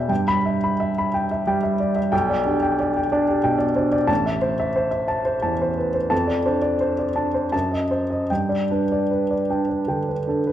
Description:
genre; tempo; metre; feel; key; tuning
classical, romantic character piece for solo piano; 74-93 BPM; 3/4; rubato; unclear; A4 = 439 Hz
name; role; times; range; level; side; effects
warm upright piano; solo; 0.0-10.5 s; A1 to B5; -19 LUFS; equal; none
room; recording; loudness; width
moderate recital hall reverb, RT60 1.6 s; none; -19 LUFS; side -11 dB against mid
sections
0.0-10.5 A section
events
none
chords
0.1 Em/G; 2.1 G/B; 4.1 Am; 6.1 Dm7/F; 7.5 F#dim7; 8.3 G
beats
| 0.10 0.80 1.47 | 2.12 2.79 3.45 | 4.10 4.77 5.44 | 6.11 6.81 7.53 | 8.29 9.10 9.87

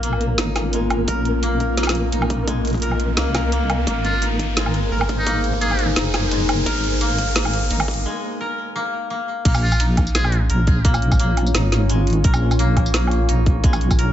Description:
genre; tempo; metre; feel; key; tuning
half-time drum and bass; 172 BPM; 4/4; swing 54% on 16ths, half-time; Bb minor; A4 = 440 Hz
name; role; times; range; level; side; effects
deep dark ambient pad; sustained chords; 0.0-14.1 s; Bb3 to Eb5; -27 LUFS; left 2 dB; chorus, built-in reverb, vintage 12-bit sampler grit, sidechain pumping
koto; arpeggios; 0.0-14.1 s; Ab3 to Bb4; -26 LUFS; left 2 dB; digital delay
deep soft wobble bass; bass; 0.0-14.1 s; Gb1 to C2; -20 LUFS; equal; chorus
drum and bass drum kit; drums; 0.0-14.1 s; crash cymbal, hi-hat, snare drum, tambourine, woodblock; -24 LUFS; right 1 dB; none
riser; sound effects; 1.0-8.1 s; none; -30 LUFS; equal; none
flickering grainy texture; texture; 0.0-8.1 s; Bb3 to Bb4; -28 LUFS; equal; built-in reverb
electronic kick drum; drums; 1.1-14.0 s; none; -19 LUFS; equal; high-pass filter on kick, high-pass filter on room
trumpet with metal mute; melody; 4.0-5.9, 9.6-10.4 s; Eb4 to Ab4; -28 LUFS; equal; digital delay
room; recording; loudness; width
moderate echo chamber reverb, RT60 1.4 s; nothing above 7.8 kHz; -17 LUFS; side -11 dB against mid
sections
0.0-9.5 A section; 9.5-14.1 B section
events
build-up 0.0-9.5; riser 1.0-8.1; break 8.1-9.5; drop 9.5-14.1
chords
0.0 Bbm; 3.9 Abadd9; 9.5 Bbm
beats
0.03 0.38 0.73 | 1.08 1.43 1.78 2.13 | 2.48 2.82 3.17 3.52 | 3.87 4.22 4.57 4.92 | 5.27 5.62 5.96 6.31 | 6.66 7.01 7.36 7.71 | 8.06 8.41 8.76 9.10 | 9.45 9.80 10.15 10.50 | 10.85 11.20 11.54 11.89 | 12.24 12.59 12.94 13.29 | 13.64 13.99

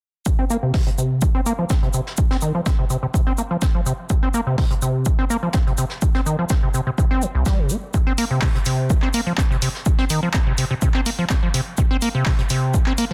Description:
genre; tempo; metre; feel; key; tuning
acid house; 125 BPM; 4/4; straight; C minor; A4 = 440 Hz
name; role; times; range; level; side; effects
acid bass, square; riff; 0.3-13.1 s; C2 to C4; -24 LUFS; equal; overdrive, cassette tape
electronic kick drum; drums; 0.3-12.8 s; none; -22 LUFS; equal; none
soft brush drum kit; drums; 0.3-13.1 s; hi-hat, shaker, snare drum; -35 LUFS; equal; sidechain pumping on hats, high-pass filter on hats, soft clipping on snare, high-pass filter on snare, sidechain pumping on perc, high-pass filter on perc, high-pass filter on room
punchy analog drum machine; drums; 8.2-13.1 s; handclaps, hi-hat; -30 LUFS; equal; none
room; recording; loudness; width
light reverb, small room ambience; dense, heavily limited modern master; -20 LUFS; mono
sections
0.3-13.1 A section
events
filter sweep on acid bass 0.3-13.1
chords
none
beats
| 0.26 0.74 1.22 1.70 | 2.18 2.66 3.14 3.62 | 4.10 4.58 5.06 5.54 | 6.02 6.50 6.98 7.46 | 7.94 8.42 8.90 9.38 | 9.86 10.34 10.82 11.30 | 11.78 12.26 12.74

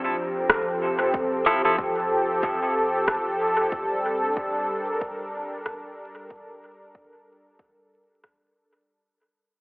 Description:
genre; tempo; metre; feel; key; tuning
ambient dub; 93 BPM; 4/4; swing 57% on 16ths; G minor; A4 = 440 Hz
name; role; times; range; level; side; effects
warm analog pad; sustained chords; 0.0-8.9 s; F3 to Bb4; -24 LUFS; equal; chorus
electronic kick drum; drums; 0.5-8.4 s; none; -35 LUFS; equal; overdrive
electronic rim click; drums; 0.5-8.4 s; none; -26 LUFS; equal; overdrive, dub echo
semi-hollow electric guitar; stabs; 1.5-1.8 s; F3 to A4; -27 LUFS; equal; dub echo
room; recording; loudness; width
wet spring reverb, RT60 2.4 s; echo-heavy mix, vinyl crackle, telephone sound; -22 LUFS; side -37 dB against mid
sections
0.0-8.9 A section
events
fade-out 0.0-8.9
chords
0.0 F; 3.7 Gm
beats
0.49 | 1.14 1.78 2.43 3.07 | 3.72 4.36 5.01 5.65 | 6.30 6.94 7.59 8.23

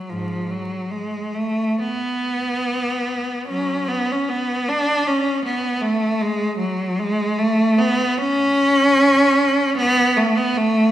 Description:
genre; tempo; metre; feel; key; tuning
classical, free, expressive piece for unaccompanied cello; 69-81 BPM; 4/4; rubato; unclear; A4 = 443 Hz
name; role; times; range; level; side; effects
clear cello; solo; 0.0-10.9 s; G#2 to D4; -17 LUFS; equal; none
room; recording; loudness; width
wet scoring stage reverb, RT60 1.8 s; recorded in a church or concert hall, vinyl crackle; -17 LUFS; side -12 dB against mid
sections
0.0-10.9 A section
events
none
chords
none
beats
| 0.09 0.94 1.78 2.65 | 3.47 4.29 5.09 5.86 | 6.62 7.40 8.17 8.96 | 9.76 10.56

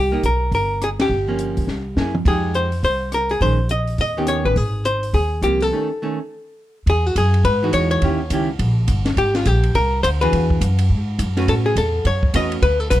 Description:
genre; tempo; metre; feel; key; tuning
jazz, small-group swing and bop; 208 BPM; 4/4; swing 62% on 8ths; E major from 6.9 s; A4 = 441 Hz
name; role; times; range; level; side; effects
archtop guitar, miked and amplified; melody; 0.0-13.0 s; F4 to Eb5; -20 LUFS; left 1 dB; plate reverb
upright bass; bass; 0.0-13.0 s; G1 to A2; -20 LUFS; equal; none
archtop guitar, miked and amplified; accompaniment; 0.1-12.6 s; Eb3 to B4; -22 LUFS; right 2 dB; none
compact cocktail drum kit; drums; 0.2-13.0 s; hi-hat, kick drum, ride cymbal, rim click, snare drum, toms; -25 LUFS; equal; none
room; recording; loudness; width
light reverb; dark, warm production; -16 LUFS; side -14 dB against mid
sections
0.0-6.9 A section; 6.9-13.0 B section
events
band accent 1.0; drum fill 1.7-2.3; break 5.7-6.9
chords
0.0 C7(no3); 1.1 Gm7b5; 1.7 C7b13; 2.3 Fm9; 3.4 Bbm11; 4.0 Ebaug7; 4.6 Ab69; 5.7 A; 6.9 Emaj9; 8.0 D#7b9; 9.2 G#maj7; 10.3 E9; 11.5 A69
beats
0.23 0.52 0.81 | 1.10 1.39 1.68 1.97 | 2.25 2.54 2.83 3.12 | 3.41 3.70 3.99 4.28 | 4.56 4.85 5.14 5.43 | 5.72 6.01 6.29 6.58 | 6.87 7.16 7.45 7.74 | 8.03 8.31 8.60 8.89 | 9.18 9.47 9.75 10.04 | 10.33 10.62 10.90 11.19 | 11.48 11.77 12.05 12.34 | 12.63 12.92

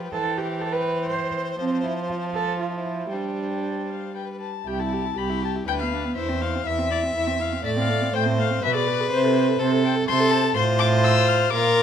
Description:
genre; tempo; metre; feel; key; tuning
quick classical-period movement for string quartet; 122 BPM; 3/4; rubato; C major; A4 = 440 Hz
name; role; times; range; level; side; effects
dark violin; melody; 0.0-11.8 s; C5 to F6; -28 LUFS; left 11 dB; none
warm violin; second line; 0.0-11.8 s; E4 to E5; -26 LUFS; left 3 dB; none
warm viola; accompaniment; 0.0-11.8 s; E3 to C5; -28 LUFS; right 2 dB; none
warm cello; bass; 0.1-11.8 s; C2 to C5; -25 LUFS; right 4 dB; none
room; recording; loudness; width
moderate recital hall reverb, RT60 1.5 s; none; -21 LUFS; side -8 dB against mid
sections
0.0-4.7 A section; 4.7-11.8 B section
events
none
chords
0.1 C/E; 1.6 F; 3.1 Gsus4; 4.2 G; 4.7 C; 5.7 Bdim/D; 6.2 C/E; 7.7 Am; 8.6 G#dim/B; 9.1 Am/C; 10.6 F/A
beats
| 0.15 0.63 1.11 | 1.61 2.10 2.60 | 3.12 3.64 4.16 | 4.67 5.18 5.68 | 6.18 6.68 7.16 | 7.66 8.15 8.63 | 9.11 9.60 10.08 | 10.56 11.05 11.53

